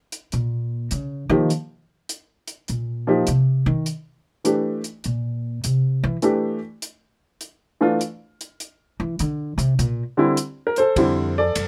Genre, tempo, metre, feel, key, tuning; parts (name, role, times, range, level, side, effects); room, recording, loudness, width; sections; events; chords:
jazz piano trio; 102 BPM; 4/4; swing 66% on 8ths; F major; A4 = 445 Hz
compact cocktail drum kit; drums; 0.1-11.7 s; hi-hat, kick drum, ride cymbal; -32 LUFS; equal
upright bass; bass; 0.3-11.7 s; F2 to E3; -24 LUFS; equal
warm upright piano; melody; 1.3-11.7 s; D3 to D5; -21 LUFS; equal
little or no reverb; -22 LUFS; mono
0.0-11.0 A section
upright bass solo 0.0-11.0
0.3 Eb7(no3); 1.5 Bbsus24; 3.9 C7(no3); 6.2 F6 (rootless); 8.6 Cadd9; 9.8 C7(no3); 11.0 F6